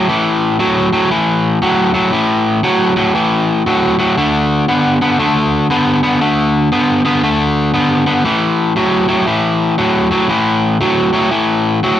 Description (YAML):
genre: blues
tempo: 118 BPM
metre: 4/4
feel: swing 64% on 8ths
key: unclear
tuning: A4 = 440 Hz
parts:
  - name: crunchy overdriven guitar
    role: solo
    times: 0.0-12.0 s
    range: A2 to B3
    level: -11 LUFS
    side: equal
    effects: none
room: light reverb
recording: none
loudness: -11 LUFS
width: side -11 dB against mid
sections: 0.0-12.0 A section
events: none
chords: 0.0 A5; 4.2 D5; 8.2 A5